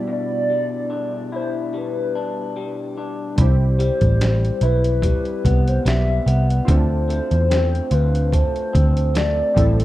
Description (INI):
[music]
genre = indie pop, bedroom pop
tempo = 73 BPM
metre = 4/4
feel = swing 55% on 16ths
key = unclear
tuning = A4 = 440 Hz
[part]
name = electric guitar through a small old amp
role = accompaniment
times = 0.0-9.8 s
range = A2 to F4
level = -27 LUFS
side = left 4 dB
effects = lush chorus, vibrato effect
[part]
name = warm analog keys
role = accompaniment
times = 0.0-9.8 s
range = B2 to D5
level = -30 LUFS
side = right 3 dB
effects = chorus, cassette tape
[part]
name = warbly nostalgic lead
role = melody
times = 0.1-9.8 s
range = B4 to E5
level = -24 LUFS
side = left 1 dB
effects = wide subtle chorus, tape echo
[part]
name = vintage muted picked electric bass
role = bass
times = 3.4-9.8 s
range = A1 to E2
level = -17 LUFS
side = equal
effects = none
[part]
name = trip hop sampler-style drum kit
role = drums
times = 3.4-9.8 s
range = hi-hat, kick drum, snare drum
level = -22 LUFS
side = equal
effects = none
[sound]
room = little or no reverb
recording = rough home demo mix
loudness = -17 LUFS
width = side -15 dB against mid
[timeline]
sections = 0.0-9.8 A section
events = none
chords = 0.0 Em7/B; 3.4 Cmaj7; 6.7 Dm7